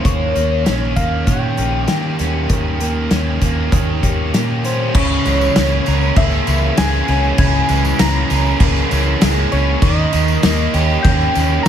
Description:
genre	rock, shoegaze and dream pop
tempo	98 BPM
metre	4/4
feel	straight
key	unclear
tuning	A4 = 441 Hz
part	soft struck synth lead	melody	0.0-11.7 s	C5 to Bb5	-22 LUFS	left 1 dB	chorus, phaser, slapback echo
part	electric guitar through a small old amp	arpeggios	0.0-11.7 s	Fb3 to Ab4	-28 LUFS	right 1 dB	lush chorus, slapback echo
part	biting overdriven guitar	riff	0.0-11.7 s	Db3 to Bb4	-22 LUFS	right 11 dB	reverse reverb
part	overdriven electric guitar	riff	0.0-11.7 s	Db3 to Ab4	-23 LUFS	left 12 dB	lush chorus
part	vintage muted fingered electric bass	bass	0.1-11.7 s	Bb1 to Eb3	-18 LUFS	equal	none
part	loose indie drum kit	drums	0.1-11.7 s	crash cymbal, hi-hat, kick drum, snare drum	-18 LUFS	equal	none
part	tambourine	percussion	4.9-11.7 s	none	-35 LUFS	left 7 dB	none
room	studio reverb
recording	none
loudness	-13 LUFS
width	side -9 dB against mid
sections	0.0-4.9 A section; 4.9-11.7 B section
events	none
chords	0.0 Eb7; 4.9 Dbm6; 9.8 Eb7

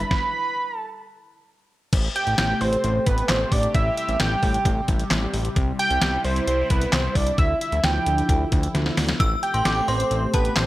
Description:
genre	synth-pop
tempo	132 BPM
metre	4/4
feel	straight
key	A minor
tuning	A4 = 440 Hz
part	fat analog lead	melody	0.0-10.7 s	B4 to B5	-24 LUFS	right 1 dB	chorus, slapback echo
part	sweeping resonant pad	sustained chords	0.0-10.7 s	C3 to G4	-30 LUFS	equal	chorus
part	fat analog bass	bass	0.0-10.7 s	A1 to D2	-25 LUFS	equal	none
part	detuned 8-bit digital drum machine	drums	0.1-10.7 s	crash cymbal, handclaps, hi-hat, kick drum, snare drum	-23 LUFS	equal	none
part	synth chime	second line	9.2-10.7 s	A5 to E6	-27 LUFS	left 1 dB	ensemble chorus, tremolo, slapback echo
room	light reverb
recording	none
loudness	-19 LUFS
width	side -16 dB against mid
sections	0.0-1.9 A section; 1.9-10.7 B section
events	stop 0.1-1.9; drum fill 8.7-9.2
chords	0.1 N.C.; 1.9 Am7; 5.6 C; 7.4 Dmadd9; 9.2 Am7

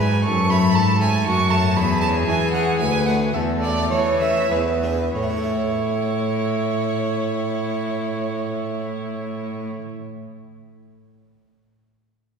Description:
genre	classical, baroque-style sonata movement with continuo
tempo	93-120 BPM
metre	3/4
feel	straight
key	A major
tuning	A4 = 440 Hz
part	rich violin	melody	0.0-9.7 s	E4 to C#5	-28 LUFS	left 4 dB	none
part	rich violin	second line	0.0-9.7 s	B4 to C#6	-24 LUFS	right 3 dB	none
part	harpsichord	accompaniment	0.0-10.0 s	D2 to E5	-27 LUFS	left 1 dB	none
part	rich cello	bass	0.0-9.7 s	D2 to E3	-22 LUFS	equal	none
room	wet concert hall reverb, RT60 2.5 s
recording	heard from further back in the room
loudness	-19 LUFS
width	side -6 dB against mid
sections	0.0-5.2 A section; 5.2-9.0 B section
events	slowing down 1.0-5.2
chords	0.3 F#m; 1.8 C#m/E; 2.8 D5; 3.3 A/E; 4.5 E7; 5.2 A

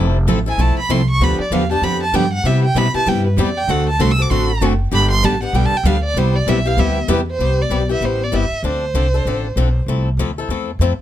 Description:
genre	acoustic string swing (jazz manouche)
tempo	194 BPM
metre	4/4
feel	swing 60% on 8ths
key	C major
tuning	A4 = 438 Hz
part	picked steel-string acoustic guitar	accompaniment	0.0-7.2 s	C3 to A4	-22 LUFS	right 6 dB	none
part	picked swing-style acoustic guitar	accompaniment	0.0-10.9 s	C3 to A4	-21 LUFS	left 6 dB	none
part	upright bass	bass	0.0-11.0 s	F1 to C3	-18 LUFS	equal	none
part	warm violin	melody	0.5-9.7 s	B4 to E6	-21 LUFS	right 2 dB	none
room	little or no reverb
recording	close, detailed microphones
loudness	-15 LUFS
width	side -12 dB against mid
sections	0.0-7.4 A section; 7.4-11.0 B section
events	violin solo 0.0-7.4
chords	0.0 Fmaj7; 1.2 G7; 2.4 Cmaj7; 3.7 D7; 4.9 G; 6.2 Cmaj7; 8.6 Dm7; 9.9 Fmaj7

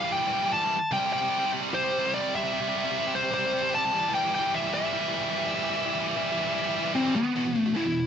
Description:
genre	metal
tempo	149 BPM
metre	4/4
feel	straight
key	E minor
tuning	A4 = 440 Hz
part	high-gain lead guitar	melody	0.0-8.1 s	B3 to A5	-26 LUFS	left 2 dB	distortion
part	heavy high-gain guitar	riff	0.0-8.0 s	E2 to G3	-28 LUFS	right 2 dB	distortion
room	moderate studio reverb, RT60 0.6 s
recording	dark, warm production, nothing above 7.9 kHz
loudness	-24 LUFS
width	side -8 dB against mid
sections	0.0-7.4 A section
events	half time 0.0-7.4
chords	0.0 Em; 0.9 C; 3.9 Em; 7.4 E5

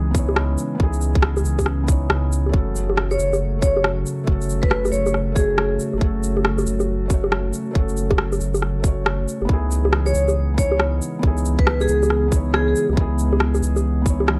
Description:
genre	future garage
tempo	138 BPM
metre	4/4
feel	swing 64% on 16ths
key	C# minor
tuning	A4 = 440 Hz
part	felt-muted upright piano	accompaniment	0.0-14.4 s	A3 to C#5	-31 LUFS	equal	sidechain pumping, tape echo
part	warbly tape-like pad	sustained chords	0.0-14.4 s	C#3 to F#4	-29 LUFS	equal	chorus, built-in reverb, sidechain pumping
part	warm sub bass	bass	0.0-14.4 s	F#1 to C#2	-25 LUFS	equal	sidechain pumping
part	electronic kick drum	drums	0.1-14.2 s	none	-21 LUFS	equal	none
part	electronic shaker, bongos and rim click	drums	0.1-14.4 s	none	-25 LUFS	equal	none
part	vibraphone with medium mallets	melody	3.1-5.7, 10.1-12.7 s	G#4 to C#5	-26 LUFS	equal	tape echo
room	digital ambience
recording	dry, gritty hardware recording, lossy compression artefacts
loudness	-20 LUFS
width	mono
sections	0.0-14.4 A section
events	none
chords	0.0 C#m7; 2.5 F#m; 9.5 C#m7

